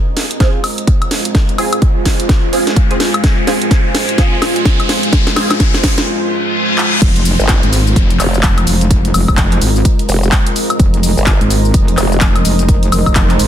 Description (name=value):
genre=bass house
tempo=127 BPM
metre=4/4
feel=swing 60% on 16ths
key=F minor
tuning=A4 = 440 Hz
part: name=deep dark ambient pad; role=sustained chords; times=0.2-13.5 s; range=Ab3 to C5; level=-20 LUFS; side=right 1 dB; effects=chorus, built-in reverb, sidechain pumping
part: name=riser, reverse cymbal and downlifter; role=sound effects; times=1.0-10.8 s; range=none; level=-21 LUFS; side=left 2 dB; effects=none
part: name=granular cloud pad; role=texture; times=0.0-13.5 s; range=C4 to Ab5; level=-25 LUFS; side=right 1 dB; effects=built-in reverb, sidechain pumping
part: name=house drum kit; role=drums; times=0.2-13.5 s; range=crash cymbal, handclaps, hi-hat, shaker, snare drum, woodblock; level=-17 LUFS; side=equal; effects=overdrive
part: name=band-passed chord stab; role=stabs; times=0.4-6.1 s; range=C4 to Ab4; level=-22 LUFS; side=right 4 dB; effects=phaser, ensemble chorus, sidechain pumping, digital delay
part: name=electronic kick drum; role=drums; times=0.4-13.3 s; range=none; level=-12 LUFS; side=equal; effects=none
part: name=metallic wobble bass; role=bass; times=7.0-13.5 s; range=F1 to Ab1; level=-13 LUFS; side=equal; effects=chorus, tube saturation, sidechain pumping
part: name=formant-sweep wobble bass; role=bass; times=7.4-12.2 s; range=F1 to G1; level=-14 LUFS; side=equal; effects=chorus, overdrive, sidechain pumping
room=little or no reverb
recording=dense, heavily limited modern master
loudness=-10 LUFS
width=side -10 dB against mid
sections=0.0-7.0 A section; 7.0-13.5 B section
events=build-up 0.0-7.0; drum fill 0.0-6.1, 6.8; filter sweep on synth stab 0.0-7.0; riser 1.0-6.1; reverse cymbal 6.1-7.0; drop 7.0-13.5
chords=0.0 Fm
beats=0.40 0.88 | 1.35 1.82 2.29 2.76 | 3.24 3.71 4.18 4.65 | 5.13 5.60 6.07 6.54 | 7.02 7.49 7.96 8.43 | 8.91 9.38 9.85 10.32 | 10.80 11.27 11.74 12.21 | 12.69 13.16